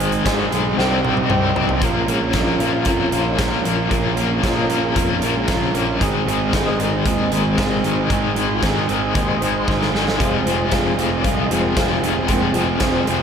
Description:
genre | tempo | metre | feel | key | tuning
classic rock | 115 BPM | 4/4 | straight | unclear | A4 = 435 Hz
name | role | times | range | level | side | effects
reed electric piano | accompaniment | 0.0-1.7, 10.2-13.2 s | Ab4 to Ab5 | -28 LUFS | left 7 dB | fast tremolo
tonewheel organ | sustained chords | 0.0-13.1 s | C3 to Eb5 | -24 LUFS | left 1 dB | overdrive, chorus vibrato, slow rotary speaker
cranked stack guitar | riff | 0.0-13.2 s | F2 to C4 | -22 LUFS | left 10 dB | overdrive, tremolo
overdriven electric guitar | riff | 0.0-13.2 s | F2 to Bb4 | -22 LUFS | right 9 dB | none
fuzz picked electric bass | bass | 0.0-13.2 s | F1 to F2 | -25 LUFS | equal | overdrive
huge arena drum kit | drums | 0.0-13.2 s | hi-hat, kick drum, snare drum, toms | -23 LUFS | equal | none
room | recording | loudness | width
moderate echo chamber reverb, RT60 1.8 s | none | -16 LUFS | side -7 dB against mid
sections
0.0-1.8 A section; 1.8-13.2 B section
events
drum fill 0.8-1.8, 9.7-10.2; tonewheel organ solo 1.8-13.2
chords
0.0 Ab; 0.8 Cm; 1.8 Bbm; 6.0 Ab; 10.2 Fm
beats
0.26 0.78 1.30 | 1.82 2.35 2.87 3.39 | 3.92 4.44 4.96 5.49 | 6.01 6.53 7.06 7.58 | 8.11 8.63 9.15 9.68 | 10.20 10.72 11.24 11.77 | 12.29 12.81

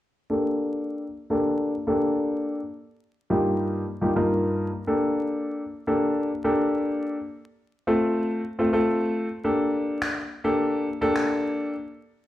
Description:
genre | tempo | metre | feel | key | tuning
dance-pop | 105 BPM | 4/4 | straight | G minor | A4 = 440 Hz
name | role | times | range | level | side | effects
clear concert grand piano | accompaniment | 0.3-11.7 s | G2 to Bb4 | -23 LUFS | left 1 dB | low-pass filter
electronic finger snaps | drums | 10.0-11.3 s | none | -29 LUFS | equal | none
room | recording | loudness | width
moderate booth ambience, RT60 0.2 s | played on a big sound system in a bare room, stone room reverb, vinyl crackle | -23 LUFS | side -14 dB against mid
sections
0.3-12.3 A section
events
filter sweep on grand piano 0.3-12.3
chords
0.3 Gmadd9; 2.6 Ebadd9/G; 4.9 Gmadd9; 7.2 F; 9.4 Gmadd9; 11.7 N.C.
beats
| 0.30 0.87 1.44 2.02 | 2.59 3.16 3.73 4.30 | 4.87 5.44 6.01 6.59 | 7.16 7.73 8.30 8.87 | 9.44 10.02 10.59 11.16 | 11.73

